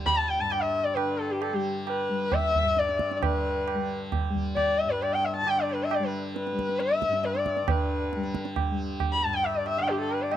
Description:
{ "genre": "indian classical, Hindustani", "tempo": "134 BPM", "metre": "5/4", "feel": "straight", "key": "G raga bhupali", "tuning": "A4 = 437 Hz", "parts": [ { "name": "tanpura", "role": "drone", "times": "0.0-10.4 s", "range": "G2 to G3", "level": "-33 LUFS", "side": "left 2 dB", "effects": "none" }, { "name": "warm sarangi", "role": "melody", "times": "0.1-10.4 s", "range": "G4 to B5", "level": "-26 LUFS", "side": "left 2 dB", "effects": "none" }, { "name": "tabla", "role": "percussion", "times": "0.1-10.4 s", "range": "none", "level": "-31 LUFS", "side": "right 5 dB", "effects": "none" } ], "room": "light reverb", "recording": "dry, close 1970s-style studio recording", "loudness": "-25 LUFS", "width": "side -11 dB against mid", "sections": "0.0-10.4 A section", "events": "speeding up 0.0-10.4", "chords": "none", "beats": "0.07 0.52 | 0.97 1.43 1.88 2.33 2.78 | 3.23 3.68 4.13 4.58 5.02 | 5.47 5.91 6.36 6.80 7.24 | 7.69 8.13 8.57 9.01 9.45 | 9.89 10.32" }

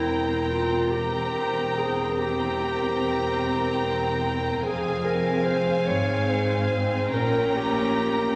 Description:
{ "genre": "classical, slow romantic movement for symphony orchestra", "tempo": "48 BPM (dotted quarters)", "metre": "12/8", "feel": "rubato", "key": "unclear", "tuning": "A4 = 439 Hz", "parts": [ { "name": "warm studio violin section", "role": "melody", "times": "0.0-8.4 s", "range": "Ab5 to Bb5", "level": "-34 LUFS", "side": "equal", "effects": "none" }, { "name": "mellow clarinet", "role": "second line", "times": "0.0-8.4 s", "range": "E4 to Db5", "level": "-30 LUFS", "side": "equal", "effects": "none" }, { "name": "warm studio violin section", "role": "second line", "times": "0.0-8.4 s", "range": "F5 to G5", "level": "-35 LUFS", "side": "equal", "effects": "none" }, { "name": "warm studio viola section", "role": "accompaniment", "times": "0.0-8.4 s", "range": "C4 to Db4", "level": "-36 LUFS", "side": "equal", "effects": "none" }, { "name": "mellow French horn section", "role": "sustained chords", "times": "0.0-8.4 s", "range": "C4 to Bb4", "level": "-31 LUFS", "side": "equal", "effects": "none" }, { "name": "dark chamber double bass section", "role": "bass", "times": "0.0-8.4 s", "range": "E1 to Bb1", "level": "-34 LUFS", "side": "equal", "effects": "none" }, { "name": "warm studio cello section", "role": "bass", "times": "0.0-8.4 s", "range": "E2 to Bb2", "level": "-36 LUFS", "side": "equal", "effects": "none" } ], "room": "wet scoring stage reverb, RT60 1.8 s", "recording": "none", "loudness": "-25 LUFS", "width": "mono", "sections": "0.0-8.4 A section", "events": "none", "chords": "0.0 C7/E; 4.6 Fm; 7.1 Gdim/Bb", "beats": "0.92 2.19 3.42 | 4.65 5.88 7.14" }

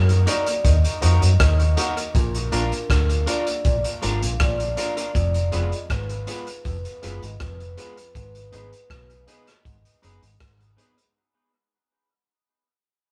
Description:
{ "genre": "roots reggae", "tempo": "80 BPM", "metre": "4/4", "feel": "straight", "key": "unclear", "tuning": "A4 = 440 Hz", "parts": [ { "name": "vibraphone with soft mallets", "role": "melody", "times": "0.0-10.4 s", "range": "Bb4 to F5", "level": "-32 LUFS", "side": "equal", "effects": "none" }, { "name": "overdriven clav", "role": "riff", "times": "0.0-10.6 s", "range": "F2 to Gb3", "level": "-38 LUFS", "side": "equal", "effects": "dub echo" }, { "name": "vintage muted fingered electric bass", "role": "bass", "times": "0.0-10.8 s", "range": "F1 to Gb2", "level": "-24 LUFS", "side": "equal", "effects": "none" }, { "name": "crunchy breakbeat drum kit", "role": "drums", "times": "0.1-11.1 s", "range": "hi-hat, kick drum, rim click", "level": "-26 LUFS", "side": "equal", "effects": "none" }, { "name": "electric guitar at the edge of break-up", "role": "accompaniment", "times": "0.3-11.0 s", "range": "Ab3 to Cb5", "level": "-35 LUFS", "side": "equal", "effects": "dub echo" }, { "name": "clear upright piano", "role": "stabs", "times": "0.3-11.0 s", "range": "D4 to Cb5", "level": "-35 LUFS", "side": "equal", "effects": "none" } ], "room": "moderate stone room reverb, RT60 1.0 s", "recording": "band playing live in one room", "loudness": "-21 LUFS", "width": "mono", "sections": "0.0-11.2 A section", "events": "fade-out 0.0-11.2", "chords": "0.0 Ebm; 2.1 Bb; 5.2 Fdim; 8.2 Abm", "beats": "0.65 1.40 | 2.15 2.90 3.65 4.40 | 5.15 5.90 6.65 7.40 | 8.15 8.90 9.65 10.40" }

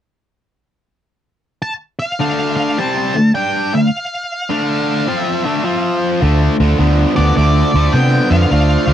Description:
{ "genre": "rock", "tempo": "105 BPM", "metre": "4/4", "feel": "swing 65% on 8ths", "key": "D minor", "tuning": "A4 = 440 Hz", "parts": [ { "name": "octave-fuzz lead guitar", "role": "melody", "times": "1.6-8.9 s", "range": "D5 to A5", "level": "-20 LUFS", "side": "equal", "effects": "distortion" }, { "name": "overdriven electric guitar", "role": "riff", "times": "2.2-8.9 s", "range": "C3 to G4", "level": "-15 LUFS", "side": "left 1 dB", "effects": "none" }, { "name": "mellow tonewheel organ", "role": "sustained chords", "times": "6.2-8.9 s", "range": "D4 to D5", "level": "-24 LUFS", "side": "right 6 dB", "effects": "slow rotary speaker" }, { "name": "vintage muted fingered electric bass", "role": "bass", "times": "6.2-8.9 s", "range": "D2 to C3", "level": "-13 LUFS", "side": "equal", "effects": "none" } ], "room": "little or no reverb", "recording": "dry, close 1970s-style studio recording", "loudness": "-13 LUFS", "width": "side -10 dB against mid", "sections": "1.6-6.2 A section; 6.2-8.9 B section", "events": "none", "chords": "1.6 Dm; 5.7 F5; 6.2 Dm7", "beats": "| 1.62 2.20 2.78 3.35 | 3.93 4.50 5.08 5.65 | 6.22 6.80 7.37 7.94 | 8.51" }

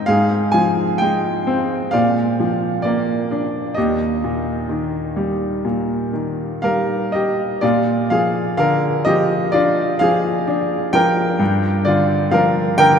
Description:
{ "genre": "classical, lyrical solo piano", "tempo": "65 BPM", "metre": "4/4", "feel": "rubato", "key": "unclear", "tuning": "A4 = 440 Hz", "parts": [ { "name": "clear grand piano", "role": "solo", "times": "0.0-13.0 s", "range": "Eb2 to Ab5", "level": "-16 LUFS", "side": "equal", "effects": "none" } ], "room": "wet cathedral reverb, RT60 6.1 s", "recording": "in a vast, echoing space", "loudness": "-16 LUFS", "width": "side -7 dB against mid", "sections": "0.0-7.6 A section; 7.6-13.0 B section", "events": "none", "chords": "0.1 Fm/Ab; 1.9 Bb; 3.8 Eb; 7.6 Bb; 11.4 Gm7", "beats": "| 0.08 1.00 1.93 2.84 | 3.77 4.69 5.64 6.63 | 7.62 8.59 9.54 10.48 | 11.40 12.32" }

